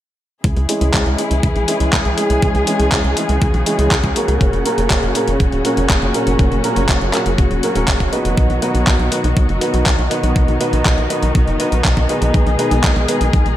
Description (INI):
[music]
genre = italo disco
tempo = 121 BPM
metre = 4/4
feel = straight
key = C# dorian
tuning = A4 = 439 Hz
[part]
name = muted studio string section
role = sustained chords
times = 0.4-13.6 s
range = A#2 to G#4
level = -20 LUFS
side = left 1 dB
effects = none
[part]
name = tight sequencer bass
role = bass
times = 0.4-13.6 s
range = E1 to C#2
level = -18 LUFS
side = equal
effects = none
[part]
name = dusty soul sampler-style drum kit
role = drums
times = 0.4-13.6 s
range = handclaps, hi-hat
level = -21 LUFS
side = equal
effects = gated reverb
[part]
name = electronic kick drum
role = drums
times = 0.4-13.4 s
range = none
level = -16 LUFS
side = equal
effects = none
[part]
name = clear baby grand piano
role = stabs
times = 0.7-13.2 s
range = G#3 to B4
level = -21 LUFS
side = right 1 dB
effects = low-pass filter, digital delay
[sound]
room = light reverb, small room reverb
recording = none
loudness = -13 LUFS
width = side -12 dB against mid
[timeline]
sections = 0.4-13.6 A section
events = filter sweep on grand piano 0.4-13.6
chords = 0.4 C#m; 4.4 F#; 8.4 B; 12.3 G#m/B